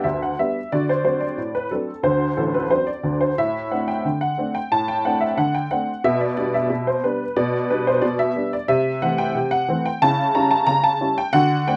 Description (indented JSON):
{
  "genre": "ragtime piano",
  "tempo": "90 BPM",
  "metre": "2/4",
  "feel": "straight",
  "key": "G major",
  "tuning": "A4 = 440 Hz",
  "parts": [
    { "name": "honky-tonk upright piano", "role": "solo", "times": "0.0-11.8 s", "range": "A1 to Bb5", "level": "-21 LUFS", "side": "equal", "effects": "none" }
  ],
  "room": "moderate studio reverb, RT60 0.6 s",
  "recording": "none",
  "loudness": "-21 LUFS",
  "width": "mono",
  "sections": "0.0-11.8 A section",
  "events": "none",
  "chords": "0.0 G; 0.7 D7; 3.4 D5/A; 6.0 G/B; 8.7 Am/C; 10.0 C#dim"
}